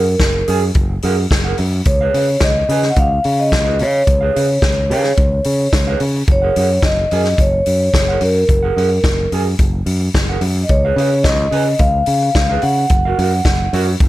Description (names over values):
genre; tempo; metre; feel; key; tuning
disco; 109 BPM; 4/4; straight; F# major; A4 = 440 Hz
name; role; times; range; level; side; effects
vibraphone with soft mallets; melody; 0.0-13.7 s; A#4 to F#5; -17 LUFS; equal; slapback echo
mellow electric guitar; accompaniment; 0.0-14.1 s; F#4 to G#5; -24 LUFS; right 6 dB; none
fingered electric bass; bass; 0.0-14.1 s; F#1 to C#3; -18 LUFS; equal; none
vintage drum kit; drums; 0.2-14.1 s; hi-hat, kick drum, snare drum; -17 LUFS; equal; gated reverb
room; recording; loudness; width
little or no reverb; none; -13 LUFS; side -16 dB against mid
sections
0.0-14.1 A section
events
none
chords
0.0 F#add9; 1.9 C#7; 6.3 F#add9; 10.7 C#7; 12.9 F#maj7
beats
0.20 0.75 1.30 | 1.86 2.41 2.96 3.51 | 4.07 4.62 5.17 5.72 | 6.28 6.83 7.38 7.93 | 8.49 9.04 9.59 10.14 | 10.69 11.25 11.80 12.35 | 12.90 13.45 14.00